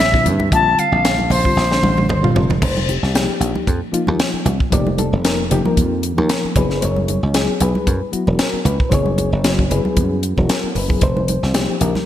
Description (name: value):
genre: electric jazz fusion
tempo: 114 BPM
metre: 4/4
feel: swing 55% on 16ths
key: unclear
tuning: A4 = 440 Hz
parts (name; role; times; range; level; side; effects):
- silver concert flute; melody; 0.0-2.4 s; C5 to A5; -17 LUFS; left 2 dB; ping-pong delay
- dry thumbed slap bass; bass; 0.0-11.9 s; Fb1 to G2; -19 LUFS; right 1 dB; none
- tight funk drum kit; drums; 0.0-12.0 s; crash cymbal, hi-hat, kick drum, snare drum, toms; -20 LUFS; equal; gated reverb
- reed electric piano; accompaniment; 0.1-12.1 s; D3 to D5; -21 LUFS; left 3 dB; fast tremolo
- congas; percussion; 0.3-12.1 s; none; -25 LUFS; right 3 dB; none
room: moderate lush hall reverb, RT60 2.2 s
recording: bright 1980s-style digital production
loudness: -15 LUFS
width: side -11 dB against mid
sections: 0.0-2.6 A section; 2.6-12.1 B section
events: drum fill 1.6-2.6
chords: 0.0 Bbadd9; 2.6 F9sus4; 6.6 Gb9sus4; 11.0 F9sus4